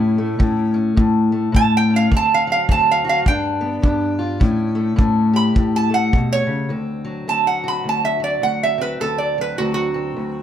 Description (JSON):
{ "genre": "acoustic country blues, solo or duo", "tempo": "105 BPM", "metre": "4/4", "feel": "swing 61% on 8ths", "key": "unclear", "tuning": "A4 = 440 Hz", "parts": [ { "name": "lap resonator guitar", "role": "melody", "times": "0.0-10.4 s", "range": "E4 to B5", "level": "-19 LUFS", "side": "right 4 dB", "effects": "none" }, { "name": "fingerpicked steel-string acoustic guitar", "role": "accompaniment", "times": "0.0-10.4 s", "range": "D2 to G4", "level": "-19 LUFS", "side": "left 2 dB", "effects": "none" }, { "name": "kick drum", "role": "drums", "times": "0.4-6.3 s", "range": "none", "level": "-17 LUFS", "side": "equal", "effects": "none" } ], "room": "light reverb", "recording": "close, detailed microphones", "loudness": "-16 LUFS", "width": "side -10 dB against mid", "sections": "0.0-6.7 A section; 6.7-10.4 A section", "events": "resonator guitar played with a steel bar solo 0.0-6.7, 6.7-10.4", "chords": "0.0 A; 2.1 D7; 3.3 G7; 4.4 A7; 6.7 D7" }